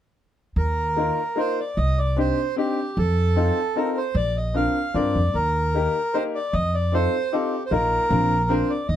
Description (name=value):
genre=musette waltz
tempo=151 BPM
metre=3/4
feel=straight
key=Eb major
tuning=A4 = 440 Hz
part: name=bandoneon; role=melody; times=0.6-9.0 s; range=G4 to F5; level=-24 LUFS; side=right 2 dB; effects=none
part: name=upright bass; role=bass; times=0.6-9.0 s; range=Bb1 to G2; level=-23 LUFS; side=equal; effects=none
part: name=bright upright piano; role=accompaniment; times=1.0-8.7 s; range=Bb3 to Bb4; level=-24 LUFS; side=left 4 dB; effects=none
room=light reverb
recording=none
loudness=-20 LUFS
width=side -10 dB against mid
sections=0.6-9.0 A section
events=none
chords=0.6 Ebsus2; 1.8 Cmadd9; 3.0 F7; 4.1 Bbadd9; 5.3 Eb; 6.5 F7; 7.7 Bbsus4; 8.1 Bbadd9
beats=| 0.57 0.97 1.37 | 1.77 2.17 2.57 | 2.97 3.36 3.76 | 4.15 4.55 4.95 | 5.34 5.74 6.14 | 6.54 6.94 7.33 | 7.72 8.12 8.51 | 8.89